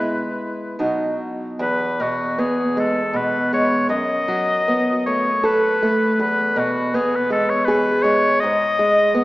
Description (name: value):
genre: romantic duo for oboe and classical guitar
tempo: 79 BPM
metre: 3/4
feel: rubato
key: E major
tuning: A4 = 440 Hz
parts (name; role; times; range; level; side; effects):
- clear oboe; melody; 0.0-9.2 s; F#4 to D#5; -20 LUFS; left 1 dB; none
- nylon-string guitar; accompaniment; 0.0-9.2 s; E2 to A4; -20 LUFS; equal; none
room: wet scoring stage reverb, RT60 2.0 s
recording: recorded in a church or concert hall, small speaker sound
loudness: -17 LUFS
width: side -18 dB against mid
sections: 0.0-1.6 A section; 1.6-9.2 B section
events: none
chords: 0.0 E; 0.8 B; 1.6 E; 3.9 B7/F#; 6.2 E; 8.4 N.C.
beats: 0.00 0.81 | 1.62 2.40 3.16 | 3.91 4.68 5.44 | 6.19 6.94 7.67 | 8.42 9.16